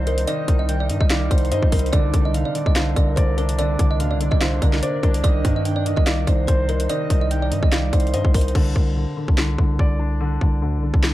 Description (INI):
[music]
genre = hip hop, trap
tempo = 145 BPM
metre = 4/4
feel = half-time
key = C minor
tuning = A4 = 440 Hz
[part]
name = breathy flute-like synth lead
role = second line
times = 0.0-8.5 s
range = Bb4 to G5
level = -31 LUFS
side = right 4 dB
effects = chorus, tape echo
[part]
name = dark baby grand piano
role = accompaniment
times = 0.0-11.1 s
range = D3 to Eb5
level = -26 LUFS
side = left 2 dB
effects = low-pass filter
[part]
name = granular cloud pad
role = sustained chords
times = 0.0-8.5 s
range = C3 to Eb4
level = -32 LUFS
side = right 2 dB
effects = built-in reverb
[part]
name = distorted 808-style bass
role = bass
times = 0.0-11.1 s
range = C2 to G2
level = -22 LUFS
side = equal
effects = distortion
[part]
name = kalimba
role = melody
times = 0.1-8.5 s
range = Bb4 to F5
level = -27 LUFS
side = right 2 dB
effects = low-pass filter, tape echo
[part]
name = trap drum kit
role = drums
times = 0.1-11.1 s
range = crash cymbal, hi-hat, kick drum, snare drum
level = -19 LUFS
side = equal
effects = none
[sound]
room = little or no reverb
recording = dark, warm production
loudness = -17 LUFS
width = side -15 dB against mid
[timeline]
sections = 0.0-8.6 A section; 8.6-11.1 B section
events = hi-hats muted 8.6-11.1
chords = 0.0 Cm; 1.9 Bb/C; 5.2 Cm; 8.6 Csus2